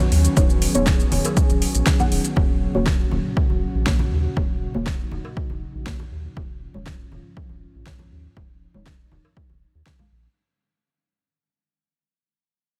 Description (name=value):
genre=progressive house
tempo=120 BPM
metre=4/4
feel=straight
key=unclear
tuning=A4 = 440 Hz
part: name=airy breathy pad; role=sustained chords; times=0.0-10.3 s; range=Ab2 to Ab4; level=-30 LUFS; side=equal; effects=chorus, sidechain pumping
part: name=deep mellow chord stab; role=stabs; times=0.0-10.3 s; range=Ab3 to F#5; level=-30 LUFS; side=equal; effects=chorus, cassette tape, sidechain pumping, delay
part: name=round analog bass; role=bass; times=0.0-10.3 s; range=D#1 to D#2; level=-26 LUFS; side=equal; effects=tube saturation, sidechain pumping
part: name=deep house drum kit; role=drums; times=0.0-10.0 s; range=hi-hat, shaker, snare drum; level=-29 LUFS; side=equal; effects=overdrive, studio reverb
part: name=congas and cowbell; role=percussion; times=0.0-10.1 s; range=none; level=-34 LUFS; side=equal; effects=sidechain pumping on perc
part: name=electronic kick drum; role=drums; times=0.4-10.0 s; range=none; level=-24 LUFS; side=equal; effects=overdrive, studio reverb
room=light reverb, digital ambience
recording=none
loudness=-21 LUFS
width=mono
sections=0.0-10.4 A section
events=fade-out 0.0-10.4; filter sweep on synth stab 0.0-10.4; filter sweep on analog synth pad 0.0-10.4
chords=0.0 Badd9/D#; 2.4 Gb/Eb; 6.4 Db/Eb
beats=| 0.37 0.87 1.37 1.87 | 2.37 2.87 3.37 3.87 | 4.37 4.87 5.37 5.87 | 6.37 6.87 7.37 7.87 | 8.37 8.87 9.37 9.87